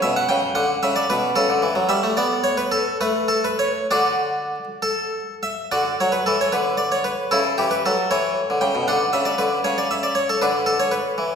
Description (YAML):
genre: classical, baroque-style suite movement for harpsichord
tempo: 64-80 BPM (dotted quarters)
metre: 6/8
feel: rubato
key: D major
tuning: A4 = 440 Hz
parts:
  - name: harpsichord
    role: solo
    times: 0.0-11.4 s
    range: B2 to G5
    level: -18 LUFS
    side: equal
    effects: none
room: wet recital hall reverb, RT60 1.6 s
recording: recorded in a church or concert hall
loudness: -18 LUFS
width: side -6 dB against mid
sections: 0.0-5.7 A section; 5.7-11.4 A section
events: none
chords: 0.0 Em69/B; 0.6 Bmadd9; 1.4 A/C#; 2.2 N.C.; 3.9 D; 6.5 N.C.; 7.3 B9sus4; 8.9 Dmaj13; 9.7 N.C.; 10.4 D5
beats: | 0.56 1.36 | 2.17 3.00 | 3.90 4.82 | 5.71 6.53 | 7.31 8.11 | 8.89 9.66 | 10.42 11.18